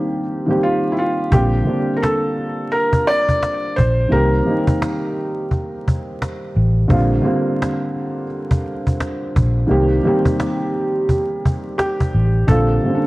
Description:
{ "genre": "lo-fi hip hop", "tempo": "86 BPM", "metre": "4/4", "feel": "swing 61% on 16ths", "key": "Bb major", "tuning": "A4 = 441 Hz", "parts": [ { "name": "dark upright piano", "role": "accompaniment", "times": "0.0-13.1 s", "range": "D3 to G4", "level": "-20 LUFS", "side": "equal", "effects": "cassette tape, low-pass filter" }, { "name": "felt-muted upright piano", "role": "melody", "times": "0.6-4.8, 11.8-13.1 s", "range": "E4 to D5", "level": "-20 LUFS", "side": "equal", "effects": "low-pass filter, analog delay" }, { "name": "vintage muted fingered electric bass", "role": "bass", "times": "1.3-12.8 s", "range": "A1 to C2", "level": "-16 LUFS", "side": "equal", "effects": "none" }, { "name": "cajon", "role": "drums", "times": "1.3-12.9 s", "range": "none", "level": "-19 LUFS", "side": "equal", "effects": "none" } ], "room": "moderate plate reverb, RT60 1.7 s", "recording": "worn, warbling old tape, cassette tape, vinyl crackle, warbly pitch drift", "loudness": "-16 LUFS", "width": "side -20 dB against mid", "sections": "0.0-1.3 A section; 1.3-13.1 B section", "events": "filter sweep 0.0-1.3", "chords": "0.0 Cm7; 1.3 Bb69; 4.1 Cm7; 6.9 Bb69; 9.7 Cm7; 12.5 Bb69" }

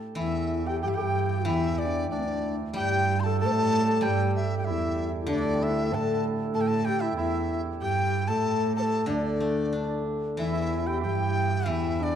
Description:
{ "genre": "chinese traditional, Chinese chamber ensemble", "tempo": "93 BPM", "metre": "4/4", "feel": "rubato", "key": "unclear", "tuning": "A4 = 440 Hz", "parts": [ { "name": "hammered dulcimer", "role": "second line", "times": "0.0-12.2 s", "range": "D4 to A4", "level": "-34 LUFS", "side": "right 5 dB", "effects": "none" }, { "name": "breathy mellow dizi", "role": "melody", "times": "0.2-12.2 s", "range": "D5 to C6", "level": "-31 LUFS", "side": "left 2 dB", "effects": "none" }, { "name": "breathy mellow low xiao", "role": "second line", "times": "0.2-12.2 s", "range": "C4 to C5", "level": "-32 LUFS", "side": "left 8 dB", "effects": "none" }, { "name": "warm cello", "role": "second line", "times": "0.2-12.2 s", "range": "D2 to A2", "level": "-29 LUFS", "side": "right 4 dB", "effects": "none" }, { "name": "steel-string zither", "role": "accompaniment", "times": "0.2-12.2 s", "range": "D3 to D4", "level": "-32 LUFS", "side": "left 3 dB", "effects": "none" } ], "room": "moderate concert hall reverb, RT60 2.5 s", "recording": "dark, warm production", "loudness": "-24 LUFS", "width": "side -9 dB against mid", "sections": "0.2-12.2 A section", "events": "none", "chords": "none" }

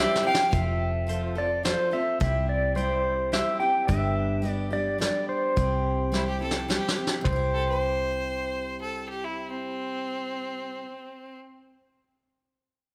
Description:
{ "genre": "honky-tonk and classic country", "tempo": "107 BPM", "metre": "3/4", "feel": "straight", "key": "C major", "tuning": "A4 = 440 Hz", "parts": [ { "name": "pedal steel guitar", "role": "melody", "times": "0.0-10.8 s", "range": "C5 to G5", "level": "-29 LUFS", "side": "equal", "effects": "none" }, { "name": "clear fiddle", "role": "second line", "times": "0.0-0.5, 6.1-11.4 s", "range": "C4 to F5", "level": "-35 LUFS", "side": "equal", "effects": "none" }, { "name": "percussive tonewheel organ", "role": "accompaniment", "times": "0.0-3.7 s", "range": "E4 to C5", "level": "-40 LUFS", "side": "equal", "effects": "overdrive, chorus vibrato, stopped rotary speaker" }, { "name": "picked steel-string acoustic guitar", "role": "accompaniment", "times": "0.0-11.0 s", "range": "G2 to A4", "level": "-34 LUFS", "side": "equal", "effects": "none" }, { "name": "pedal steel guitar", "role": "sustained chords", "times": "0.0-0.5 s", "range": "none", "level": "barely audible", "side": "none", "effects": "none" }, { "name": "vintage muted fingered electric bass", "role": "bass", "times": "0.0-10.8 s", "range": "F1 to C2", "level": "-33 LUFS", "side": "equal", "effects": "none" }, { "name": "vintage brush drum kit", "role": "drums", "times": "0.2-7.4 s", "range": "hi-hat, kick drum, snare drum, toms", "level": "-31 LUFS", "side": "equal", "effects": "none" } ], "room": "wet recital hall reverb, RT60 1.7 s", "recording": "none", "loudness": "-27 LUFS", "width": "mono", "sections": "0.5-7.3 A section; 7.3-10.6 B section", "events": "drum fill 0.0-0.5, 6.1-7.3", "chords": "0.0 C; 0.5 F; 2.2 C; 3.9 G; 5.6 C" }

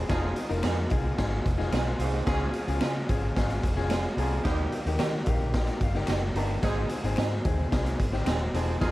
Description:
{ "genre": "uptempo 1960s-style soul", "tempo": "110 BPM", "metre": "4/4", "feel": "straight", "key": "Ab major", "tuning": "A4 = 438 Hz", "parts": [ { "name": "bright upright piano", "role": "accompaniment", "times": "0.0-8.9 s", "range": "Bb3 to Bb5", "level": "-33 LUFS", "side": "left 4 dB", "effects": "tube saturation" }, { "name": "overdriven tonewheel organ", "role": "sustained chords", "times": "0.0-8.9 s", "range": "Eb3 to C5", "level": "-41 LUFS", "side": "right 2 dB", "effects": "none" }, { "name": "raspy baritone saxophone", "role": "riff", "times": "0.0-8.9 s", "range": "Eb2 to Ab2", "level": "-36 LUFS", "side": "right 6 dB", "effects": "none" }, { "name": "vintage muted fingered electric bass", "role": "bass", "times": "0.0-8.9 s", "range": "Eb1 to Eb3", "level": "-29 LUFS", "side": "equal", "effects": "none" }, { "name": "clear horn section", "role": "second line", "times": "0.1-8.9 s", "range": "Bb3 to Ab4", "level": "-36 LUFS", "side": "right 2 dB", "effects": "none" }, { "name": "raw garage drum kit", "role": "drums", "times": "0.1-8.9 s", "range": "hi-hat, kick drum, snare drum", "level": "-28 LUFS", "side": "equal", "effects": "none" }, { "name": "clean electric guitar", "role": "stabs", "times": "0.6-8.4 s", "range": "Bb3 to Ab4", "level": "-32 LUFS", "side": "right 6 dB", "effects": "none" }, { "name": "finger snaps", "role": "percussion", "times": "0.6-8.4 s", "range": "none", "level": "-44 LUFS", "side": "left 5 dB", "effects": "none" } ], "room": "studio ambience", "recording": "vinyl crackle", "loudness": "-25 LUFS", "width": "side -17 dB against mid", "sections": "0.0-8.9 A section", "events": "upright piano fill 5.0-6.6", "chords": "0.1 Fm7; 2.3 Db; 4.5 Eb; 6.6 Ab" }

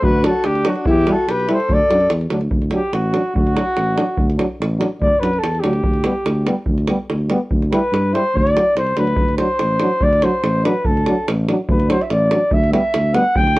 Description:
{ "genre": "balkan folk, Balkan brass band", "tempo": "144 BPM", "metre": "2/4", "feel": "straight", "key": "D mixolydian", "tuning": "A4 = 440 Hz", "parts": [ { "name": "warm flugelhorn", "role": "melody", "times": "0.0-13.6 s", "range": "F#4 to G5", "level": "-18 LUFS", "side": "equal", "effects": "none" }, { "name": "breathy alto saxophone", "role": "second line", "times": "0.0-2.1 s", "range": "D4 to A4", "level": "-21 LUFS", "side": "left 2 dB", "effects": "none" }, { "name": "mellow tuba", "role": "bass", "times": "0.0-13.6 s", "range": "A1 to G2", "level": "-20 LUFS", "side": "equal", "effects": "none" }, { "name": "davul", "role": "percussion", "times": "0.0-13.6 s", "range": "none", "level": "-22 LUFS", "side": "right 1 dB", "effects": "none" }, { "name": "clear trombone", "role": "accompaniment", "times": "0.2-13.6 s", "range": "B3 to E4", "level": "-24 LUFS", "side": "left 2 dB", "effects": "none" }, { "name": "clear euphonium", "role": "accompaniment", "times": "0.3-13.6 s", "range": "F#3 to G3", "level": "-23 LUFS", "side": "right 2 dB", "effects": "none" } ], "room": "light reverb", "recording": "worn, warbling old tape, cassette tape, warbly pitch drift", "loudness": "-15 LUFS", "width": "side -19 dB against mid", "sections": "0.0-2.5 A section; 2.5-13.6 B section", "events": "flugelhorn solo 2.5-13.6", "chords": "0.0 D; 0.9 Em; 1.7 D; 5.8 G/D; 7.5 D13sus4; 8.3 D; 12.5 G/D" }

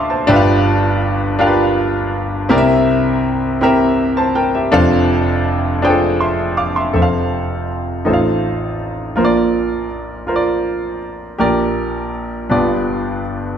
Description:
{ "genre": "gospel", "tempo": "54 BPM (dotted quarters)", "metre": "6/8", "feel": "straight", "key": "F major", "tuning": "A4 = 440 Hz", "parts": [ { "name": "clear grand piano", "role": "solo", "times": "0.0-13.6 s", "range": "F1 to D6", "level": "-14 LUFS", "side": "equal", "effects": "none" } ], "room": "wet large studio reverb, RT60 1.3 s", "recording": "dark, warm production", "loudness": "-14 LUFS", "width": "side -8 dB against mid", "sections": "0.0-6.9 A section; 6.9-13.6 B section", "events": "none", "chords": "0.3 G7; 2.5 C7; 4.7 F6; 6.9 F; 8.1 F7/A; 9.2 Bb; 11.4 Gm/Bb; 12.5 G7" }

